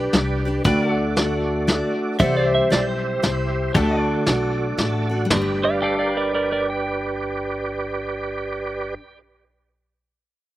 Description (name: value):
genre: honky-tonk and classic country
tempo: 116 BPM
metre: 3/4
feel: swing 62% on 8ths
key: G major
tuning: A4 = 440 Hz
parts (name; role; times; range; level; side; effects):
- picked steel-string acoustic guitar; accompaniment; 0.0-9.1 s; C3 to D5; -24 LUFS; left 2 dB; none
- tonewheel organ; accompaniment; 0.0-8.9 s; F#4 to A5; -26 LUFS; right 3 dB; slow rotary speaker, overdrive, chorus vibrato
- pedal steel guitar; sustained chords; 0.0-9.2 s; F#4 to G5; -29 LUFS; left 1 dB; lush chorus
- upright bass; bass; 0.0-8.9 s; G1 to D2; -28 LUFS; equal; none
- soft brush drum kit; drums; 0.1-5.5 s; hi-hat, kick drum, snare drum, splash cymbal, toms; -20 LUFS; equal; none
- pedal steel guitar; second line; 2.2-9.2 s; Bb4 to G5; -24 LUFS; right 3 dB; none
room: little or no reverb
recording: recorded outdoors, with no room sound, faint mains hum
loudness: -19 LUFS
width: side -15 dB against mid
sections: 0.0-5.3 A section; 5.3-8.4 B section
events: tonewheel organ fill 4.5-5.3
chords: 0.0 G; 0.7 D; 2.2 C; 3.8 D; 5.3 G